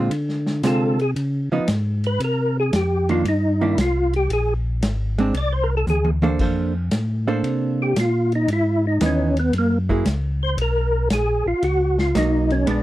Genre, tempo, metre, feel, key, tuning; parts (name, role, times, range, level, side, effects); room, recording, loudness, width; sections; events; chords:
soul jazz organ trio; 115 BPM; 4/4; swing 68% on 8ths; A4 = 440 Hz
vintage hollow-body jazz guitar; accompaniment; 0.0-12.8 s; D3 to C5; -22 LUFS; right 3 dB
mellow tonewheel organ; bass; 0.0-12.8 s; Ab1 to D3; -22 LUFS; equal; overdrive, chorus vibrato, slow rotary speaker
vintage drum kit; drums; 0.1-12.8 s; crash cymbal, hi-hat, kick drum, ride cymbal, snare drum, toms; -25 LUFS; equal
percussive tonewheel organ; melody; 0.7-12.8 s; Bb3 to D5; -21 LUFS; equal; slow rotary speaker, chorus vibrato
little or no reverb; -18 LUFS; side -15 dB against mid
0.0-6.4 A section; 6.4-12.8 A section
tonewheel organ solo 0.0-6.4, 6.4-12.8; drum fill 5.9-6.4
0.1 Dm7b5; 1.2 Db9; 2.2 Cm9; 4.3 Bb9; 6.4 Bbmaj9; 8.5 Dbm9; 9.5 Gb9; 10.6 Bmaj7